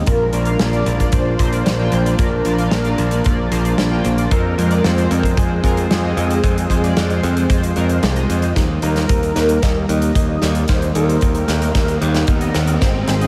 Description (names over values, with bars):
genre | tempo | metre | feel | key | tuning
synthwave | 113 BPM | 4/4 | straight | Eb major | A4 = 439 Hz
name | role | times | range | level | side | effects
warm analog pad | sustained chords | 0.0-13.3 s | Eb3 to D4 | -25 LUFS | equal | chorus, sidechain pumping
unison lead | melody | 0.1-13.3 s | Ab4 to Eb5 | -26 LUFS | equal | ensemble chorus, tape echo
chorused polysynth | stabs | 0.1-13.3 s | Ab2 to G5 | -26 LUFS | equal | tape echo
modern bright picked electric bass | bass | 0.1-13.3 s | Ab1 to F2 | -21 LUFS | equal | sidechain pumping
big rock drum kit | drums | 0.1-13.3 s | hi-hat, snare drum | -27 LUFS | equal | high-pass filter on hats, high-pass filter on snare, high-pass filter on room
kick drum | drums | 0.1-12.9 s | none | -22 LUFS | equal | none
riser | sound effects | 10.4-13.3 s | none | -31 LUFS | equal | none
room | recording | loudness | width
moderate huge ambient reverb, RT60 8.0 s | dreamy mix soaked in reverb | -17 LUFS | mono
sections
0.0-8.6 A section; 8.6-13.3 B section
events
drum fill 8.6-13.3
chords
0.1 Bb; 4.3 Fm; 8.6 Eb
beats
| 0.07 0.60 1.13 1.66 | 2.19 2.72 3.25 3.78 | 4.31 4.84 5.38 5.91 | 6.44 6.97 7.50 8.03 | 8.56 9.09 9.62 10.15 | 10.69 11.22 11.75 12.28 | 12.81